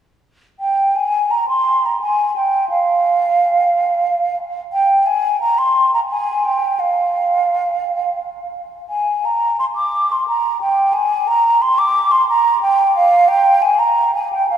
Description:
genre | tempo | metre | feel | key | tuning
classical, baroque-style fantasia for unaccompanied flute | 87 BPM | 3/4 | rubato | unclear | A4 = 440 Hz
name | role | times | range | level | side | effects
mellow hollow concert flute | solo | 0.6-14.6 s | F5 to D6 | -14 LUFS | right 1 dB | none
room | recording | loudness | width
wet cathedral reverb, RT60 5.6 s | small room reverb | -14 LUFS | side -9 dB against mid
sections
0.6-14.6 A section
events
none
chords
none

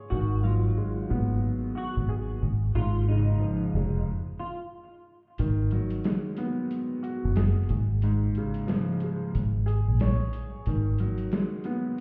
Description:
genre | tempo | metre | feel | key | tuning
hip hop, boom-bap hip-hop | 91 BPM | 4/4 | swing 62% on 16ths | G# dorian | A4 = 439 Hz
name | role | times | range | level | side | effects
warm upright piano | accompaniment | 0.0-12.0 s | G#2 to C#5 | -33 LUFS | equal | cassette tape, high-pass filter, low-pass filter
semi-hollow electric guitar | melody | 0.1-4.6 s | D#4 to F#4 | -40 LUFS | equal | ensemble chorus, high-pass filter, low-pass filter, tape echo
deep dub fingered electric bass | bass | 0.1-11.0 s | E#1 to A#1 | -27 LUFS | equal | none
boom bap sampler-style drum kit | drums | 5.4-12.0 s | hi-hat, snare drum | -34 LUFS | equal | none
room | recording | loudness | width
light reverb, digital ambience | heard muffled through a wall, club reverb, vinyl crackle, EQ | -27 LUFS | mono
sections
0.0-5.4 A section; 5.4-12.0 B section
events
stop 4.1-5.4; kick muted 5.4-12.0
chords
0.1 G#m7; 2.4 C#/G#; 4.1 N.C.; 5.4 G#m7; 7.7 C#/G#; 9.3 G#sus24; 10.7 G#m7

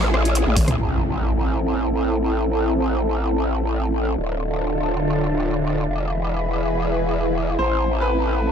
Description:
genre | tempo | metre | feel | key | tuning
heavy wobble dubstep | free time | none | none | A harmonic minor | A4 = 442 Hz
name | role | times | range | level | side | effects
supersaw pad | sustained chords | 0.0-8.5 s | D3 to B5 | -23 LUFS | equal | phaser, sidechain pumping, low-pass filter
growl bass | bass | 0.0-8.5 s | D1 to C2 | -22 LUFS | equal | chorus, overdrive
big-room dance drum kit | drums | 0.0-0.8 s | hi-hat, rim click, toms | -24 LUFS | left 1 dB | overdrive, low-pass filter on hats, low-pass filter on snare, low-pass filter on toms
electronic kick drum | drums | 0.6-0.7 s | none | -19 LUFS | equal | none
impact | sound effects | 0.8-2.5 s | none | -27 LUFS | equal | none
clear concert grand piano | melody | 7.6-8.5 s | B4 to C5 | -23 LUFS | left 2 dB | tape echo
room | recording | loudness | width
moderate lush hall reverb, RT60 1.9 s, digital ambience | dark, warm production | -19 LUFS | side -7 dB against mid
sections
0.8-8.5 A section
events
drum fill 0.5-0.8; impact 0.8-2.5; filter sweep on supersaw synth 0.8-8.5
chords
0.0 A5; 0.8 Am; 4.2 Dm; 5.9 E; 7.6 Am

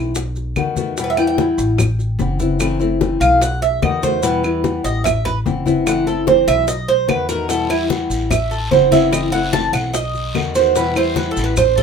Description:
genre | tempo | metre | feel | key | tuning
latin, Cuban son and guajira | 147 BPM | 4/4 | straight | E harmonic minor | A4 = 440 Hz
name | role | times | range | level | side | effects
flamenco guitar | accompaniment | 0.0-11.6 s | B2 to F#4 | -20 LUFS | left 4 dB | none
upright bass | bass | 0.0-11.8 s | F#1 to E2 | -22 LUFS | equal | none
bongos | percussion | 0.2-11.8 s | none | -28 LUFS | left 6 dB | none
congas | percussion | 0.2-11.8 s | none | -23 LUFS | left 6 dB | none
maracas | percussion | 0.2-11.8 s | none | -30 LUFS | right 2 dB | none
claves | percussion | 0.6-11.8 s | none | -27 LUFS | right 3 dB | none
Cuban tres | arpeggios | 1.0-11.8 s | E4 to A5 | -17 LUFS | right 5 dB | none
guiro | percussion | 7.5-11.8 s | none | -31 LUFS | equal | none
room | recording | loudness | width
light reverb | minimal, uncompressed stereo recording | -15 LUFS | side -6 dB against mid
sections
0.0-11.8 A section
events
Cuban tres solo 0.0-11.8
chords
0.2 B7; 1.0 Em; 1.8 F#m7b5; 3.4 B7; 4.2 Em; 5.1 F#m7b5; 6.7 B7; 7.5 Em; 8.3 F#m7b5; 9.9 B7; 10.8 Em

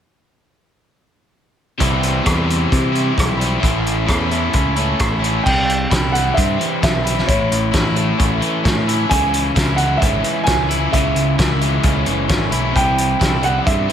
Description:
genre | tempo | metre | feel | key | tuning
indie rock | 132 BPM | 4/4 | straight | unclear | A4 = 440 Hz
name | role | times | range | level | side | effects
crunchy overdriven guitar | riff | 1.8-13.9 s | A2 to E4 | -19 LUFS | left 1 dB | none
growling picked electric bass | bass | 1.8-13.9 s | F#1 to C3 | -20 LUFS | equal | overdrive
loose indie drum kit | drums | 1.8-13.9 s | crash cymbal, hi-hat, kick drum, rim click, snare drum | -20 LUFS | equal | none
warm upright piano | melody | 5.4-13.9 s | C#5 to G#5 | -21 LUFS | right 2 dB | digital delay
room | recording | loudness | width
small room ambience | none | -14 LUFS | side -9 dB against mid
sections
1.8-5.5 A section; 5.5-13.9 B section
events
none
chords
1.8 C; 3.6 A; 5.5 C; 7.3 A; 9.1 C#m; 12.8 C

